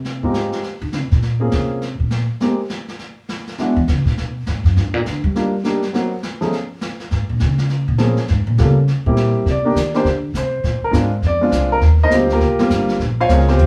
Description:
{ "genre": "jazz piano trio", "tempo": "204 BPM", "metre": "4/4", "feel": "swing 62% on 8ths", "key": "F minor, C minor from 9.5 s", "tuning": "A4 = 439 Hz", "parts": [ { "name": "upright bass", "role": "bass", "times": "0.0-13.7 s", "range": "G1 to G3", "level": "-19 LUFS", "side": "equal", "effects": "none" }, { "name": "jazz brush drum kit", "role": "drums", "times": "0.0-13.7 s", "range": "brushed snare drum, hi-hat, kick drum, snare drum, toms", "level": "-30 LUFS", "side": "equal", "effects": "none" }, { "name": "warm grand piano", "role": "melody", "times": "0.2-13.7 s", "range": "F3 to F5", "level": "-20 LUFS", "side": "equal", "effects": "none" } ], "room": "wet studio reverb, RT60 0.6 s", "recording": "heard from further back in the room, small room ambience", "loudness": "-18 LUFS", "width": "mono", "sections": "0.1-9.5 A section; 9.5-13.7 A section", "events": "upright bass solo 0.0-9.5; grand piano solo 9.5-13.7", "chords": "0.1 Fm9; 1.2 Bbm9; 1.8 N.C.; 3.6 Eadd9; 4.8 Ebmaj7; 5.9 Cm7b5; 6.5 N.C.; 7.1 Bbm7; 8.9 C7; 9.5 Cmadd9; 10.6 Bb9; 11.8 Eb69; 13.0 Bbm9" }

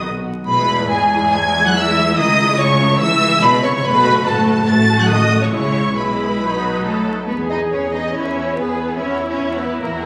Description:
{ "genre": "quick classical-period movement for string orchestra", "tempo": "143 BPM", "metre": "4/4", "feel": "straight", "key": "E major", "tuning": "A4 = 440 Hz", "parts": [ { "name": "warm studio violin section", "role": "melody", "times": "0.0-10.1 s", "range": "E4 to A6", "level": "-20 LUFS", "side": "equal", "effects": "none" }, { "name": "rich studio violin section", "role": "second line", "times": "0.0-10.1 s", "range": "G#4 to A5", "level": "-25 LUFS", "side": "equal", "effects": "none" }, { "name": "rich studio viola section", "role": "accompaniment", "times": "0.0-10.1 s", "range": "F#3 to G#4", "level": "-24 LUFS", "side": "equal", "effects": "none" }, { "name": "rich studio cello section", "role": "bass", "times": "0.0-10.1 s", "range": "G#2 to D#4", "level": "-24 LUFS", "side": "equal", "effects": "none" }, { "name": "rich studio double bass section", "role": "bass", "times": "0.0-10.1 s", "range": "F#1 to E2", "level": "-26 LUFS", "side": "equal", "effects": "none" } ], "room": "moderate recital hall reverb, RT60 1.8 s", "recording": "recorded on a phone in the room, club reverb, vinyl crackle", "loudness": "-16 LUFS", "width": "mono", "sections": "0.0-7.3 A section; 7.3-10.1 B section", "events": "none", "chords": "0.5 E; 2.2 C#m; 3.8 F#m; 4.7 F#m/A; 5.5 E/B; 6.4 B; 7.3 E; 9.0 F#7(no3)/E" }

